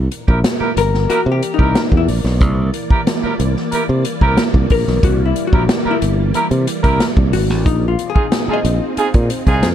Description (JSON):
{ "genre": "funk", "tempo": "91 BPM", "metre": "4/4", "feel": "straight", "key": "C mixolydian", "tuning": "A4 = 440 Hz", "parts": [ { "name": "soft string machine", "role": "sustained chords", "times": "0.1-9.7 s", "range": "E3 to D5", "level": "-24 LUFS", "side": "right 1 dB", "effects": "ensemble chorus" }, { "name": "modern bright fingered electric bass", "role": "bass", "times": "0.0-9.7 s", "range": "G1 to C3", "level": "-16 LUFS", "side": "equal", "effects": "none" }, { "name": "swinging big-band drum kit", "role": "drums", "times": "0.1-9.7 s", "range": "hi-hat, kick drum, snare drum", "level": "-17 LUFS", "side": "equal", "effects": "none" }, { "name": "clear horn section", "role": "second line", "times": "0.3-9.7 s", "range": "Eb4 to Bb4", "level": "-18 LUFS", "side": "right 2 dB", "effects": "none" }, { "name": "vintage hollow-body jazz guitar", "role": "accompaniment", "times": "0.8-8.8 s", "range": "Eb4 to Eb5", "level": "-20 LUFS", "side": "left 9 dB", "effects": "none" } ], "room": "little or no reverb", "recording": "dark, warm production", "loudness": "-13 LUFS", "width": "side -10 dB against mid", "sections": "0.0-9.7 A section", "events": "hollow-body jazz guitar solo 0.0-9.7", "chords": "0.0 C9; 7.7 Bb9sus4" }